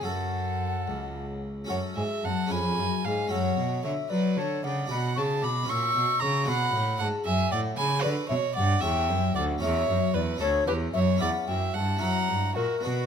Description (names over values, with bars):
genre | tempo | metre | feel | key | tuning
classical, baroque-style sonata movement with continuo | 75 BPM (dotted quarters) | 6/8 | rubato | F# minor, B minor from 8.0 s | A4 = 440 Hz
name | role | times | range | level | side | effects
baroque flute | melody | 0.0-13.1 s | A#4 to E6 | -30 LUFS | left 6 dB | none
warm violin | second line | 0.0-13.1 s | F#4 to C#6 | -31 LUFS | right 8 dB | none
harpsichord | accompaniment | 0.0-13.1 s | C#2 to C#5 | -31 LUFS | left 4 dB | none
rich cello | bass | 0.0-13.1 s | C#2 to F#3 | -30 LUFS | right 2 dB | none
room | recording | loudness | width
light reverb | close, detailed microphones | -24 LUFS | side -7 dB against mid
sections
0.0-1.7 A section; 1.7-13.1 B section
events
none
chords
0.0 F#m; 2.5 C#7/E#; 3.3 F#m; 4.9 Bm; 5.7 F#7/A#; 6.5 Bm; 8.8 C#dim/E; 9.6 F#7/E; 10.4 Bm/D; 11.2 C#m7b5/E; 12.0 F#7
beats
| 0.05 0.88 | 1.70 2.51 | 3.31 4.10 | 4.90 5.69 | 6.47 7.25 | 8.04 8.83 | 9.62 10.41 | 11.21 12.02 | 12.84